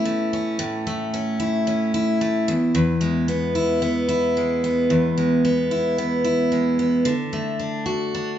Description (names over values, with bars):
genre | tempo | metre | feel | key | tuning
pop | 112 BPM | 4/4 | swing 55% on 16ths | E mixolydian | A4 = 440 Hz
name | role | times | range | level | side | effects
picked steel-string acoustic guitar | solo | 0.0-8.4 s | E2 to F#4 | -19 LUFS | equal | none
room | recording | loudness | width
moderate large studio reverb, RT60 1.1 s | band playing live in one room, nothing above 7.6 kHz | -19 LUFS | side -10 dB against mid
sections
0.0-8.4 A section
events
none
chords
0.0 A; 2.5 E; 7.0 D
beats
0.05 | 0.59 1.13 1.67 2.21 | 2.74 3.28 3.82 4.36 | 4.90 5.43 5.97 6.51 | 7.05 7.59 8.13